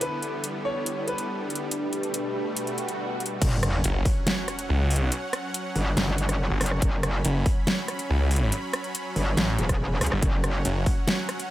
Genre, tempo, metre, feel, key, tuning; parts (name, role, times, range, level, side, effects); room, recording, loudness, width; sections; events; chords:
heavy wobble dubstep; 141 BPM; 4/4; half-time; F# phrygian; A4 = 440 Hz
clear grand piano; melody; 0.0-1.6 s; B4 to C#5; -31 LUFS; equal; digital delay
supersaw pad; sustained chords; 0.0-11.5 s; B2 to B5; -33 LUFS; right 1 dB; sidechain pumping
dubstep drum kit; drums; 0.0-11.5 s; crash cymbal, hi-hat, rim click, snare drum; -28 LUFS; equal
granular cloud pad; texture; 0.0-3.4 s; D4 to D6; -33 LUFS; equal; built-in reverb, sidechain pumping
swell and sub drop; sound effects; 2.7-5.1 s; -33 LUFS; equal
metallic wobble bass; bass; 3.4-10.6 s; E1 to C#2; -25 LUFS; equal; distortion, chorus, overdrive
electronic kick drum; drums; 3.4-4.1, 6.8-10.9 s; -25 LUFS; equal; overdrive
snarling distorted saw bass; bass; 3.8-10.8 s; F#1 to C#2; -24 LUFS; equal; overdrive
light reverb, digital ambience; -23 LUFS; side -14 dB against mid
0.0-3.4 A section; 3.4-11.5 B section
swell 2.7-3.4; drop 3.4-11.5; impact 3.4-5.1
0.0 Em7; 1.7 Gadd9; 3.4 F#5